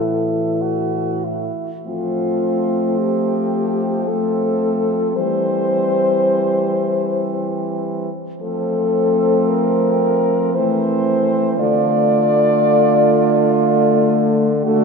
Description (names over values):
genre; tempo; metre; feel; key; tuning
classical, lyrical piece for horn quartet; 48-61 BPM; 3/4; rubato; F major; A4 = 444 Hz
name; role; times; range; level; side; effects
warm French horn; melody; 0.0-14.8 s; F4 to D5; -20 LUFS; left 4 dB; none
clear French horn; second line; 0.0-14.8 s; C4 to F#4; -22 LUFS; right 8 dB; none
dark French horn; accompaniment; 0.0-14.8 s; E3 to A3; -21 LUFS; left 2 dB; none
warm French horn; bass; 0.0-14.8 s; A2 to F3; -23 LUFS; right 2 dB; none
room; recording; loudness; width
wet cathedral reverb, RT60 4.4 s; minimal, uncompressed stereo recording; -15 LUFS; side -5 dB against mid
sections
0.0-1.9 A section; 1.9-14.8 B section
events
none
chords
0.0 A5; 1.9 F; 5.2 C/E; 8.4 F; 11.6 Dm